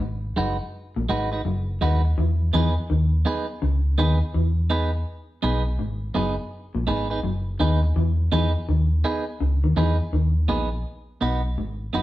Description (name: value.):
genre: reggae.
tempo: 83 BPM.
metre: 4/4.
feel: swing 65% on 16ths.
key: B major.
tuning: A4 = 440 Hz.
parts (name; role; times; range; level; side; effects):
electric guitar at the edge of break-up; riff; 0.0-12.0 s; F#2 to E3; -28 LUFS; left 3 dB; none.
vintage muted fingered electric bass; bass; 0.0-12.0 s; F#1 to E2; -22 LUFS; equal; none.
clean electric guitar; accompaniment; 0.4-12.0 s; G#3 to B4; -26 LUFS; right 3 dB; none.
room: moderate stone room reverb, RT60 1.1 s.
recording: band playing live in one room, cassette tape.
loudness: -21 LUFS.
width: side -15 dB against mid.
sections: 0.0-10.9 A section; 10.9-12.0 B section.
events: none.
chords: 0.0 B6; 2.2 Emaj7; 5.1 B6; 8.0 Emaj7; 10.9 B.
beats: 0.01 0.73 1.45 | 2.17 2.90 3.62 4.34 | 5.07 5.79 6.51 7.24 | 7.96 8.68 9.40 10.13 | 10.85 11.57.